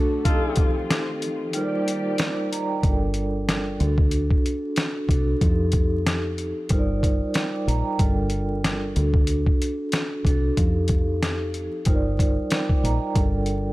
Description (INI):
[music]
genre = hip hop, boom-bap hip-hop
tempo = 93 BPM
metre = 4/4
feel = swing 55% on 16ths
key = G minor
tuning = A4 = 437 Hz
[part]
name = vibraphone with soft mallets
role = accompaniment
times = 0.0-13.7 s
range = F3 to D6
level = -26 LUFS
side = right 1 dB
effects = cassette tape, high-pass filter, low-pass filter
[part]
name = warm studio string section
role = sustained chords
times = 0.0-2.8 s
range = D3 to D5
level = -34 LUFS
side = left 1 dB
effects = high-pass filter, low-pass filter
[part]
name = mellow horn section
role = stabs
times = 0.2-0.7 s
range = Eb4 to A4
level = -29 LUFS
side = left 2 dB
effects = high-pass filter, low-pass filter, digital delay
[part]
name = boom bap sampler-style drum kit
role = drums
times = 0.3-13.6 s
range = hi-hat, kick drum, snare drum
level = -23 LUFS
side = equal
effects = none
[part]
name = deep dub fingered electric bass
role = bass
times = 2.8-13.7 s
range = G1 to F2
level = -24 LUFS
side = equal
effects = none
[sound]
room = small room ambience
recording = vinyl crackle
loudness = -20 LUFS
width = side -18 dB against mid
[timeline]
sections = 0.0-2.8 A section; 2.8-13.7 B section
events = break 0.0-2.8; kick muted 1.5-2.8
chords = 0.3 F7; 1.5 Ebmaj7; 2.8 Gm7; 3.8 D; 5.4 F7; 6.7 Ebmaj7/G; 8.0 Gm7; 9.0 D; 10.6 F7; 11.9 Ebmaj7/G; 13.2 Gm7